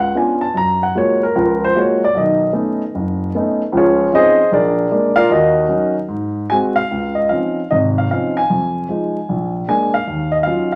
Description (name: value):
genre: solo jazz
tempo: 152 BPM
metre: 4/4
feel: swing 66% on 8ths, rubato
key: Db major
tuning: A4 = 440 Hz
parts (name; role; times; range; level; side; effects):
- dark baby grand piano; solo; 0.0-10.8 s; Gb1 to Bb5; -16 LUFS; equal; none
room: wet large studio reverb, RT60 1.1 s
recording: vinyl crackle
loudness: -16 LUFS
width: mono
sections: 0.0-6.9 A section; 6.9-10.8 B section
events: grand piano solo 0.0-6.9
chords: 0.0 Db7b9; 0.6 Gbmaj9; 2.2 Cb9; 3.7 Dbmaj9; 4.5 Bb7; 5.3 Ebm7; 6.1 Ab7; 6.9 Dbmaj9; 8.5 Fm7; 9.3 Bb7; 10.1 Ebm9